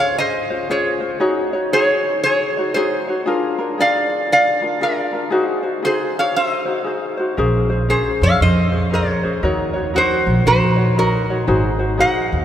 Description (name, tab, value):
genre	Hawaiian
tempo	117 BPM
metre	4/4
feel	swing 63% on 8ths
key	unclear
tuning	A4 = 443 Hz
part	metal-body resonator slide guitar	melody	0.0-12.4 s	Gb4 to Gb5	-18 LUFS	equal	none
part	ukulele	accompaniment	0.0-12.4 s	Db4 to Db5	-21 LUFS	left 2 dB	none
part	upright bass	bass	7.4-12.4 s	Ab1 to F2	-18 LUFS	right 1 dB	none
room	wet cathedral reverb, RT60 5.1 s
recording	recorded in a church or concert hall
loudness	-15 LUFS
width	side -10 dB against mid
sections	0.0-12.4 A section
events	none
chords	0.0 Dbmaj7; 1.2 Ab7sus4; 3.3 Bb7; 5.3 Ab7; 7.4 Bbm9; 9.4 Ebm7; 11.5 Ab7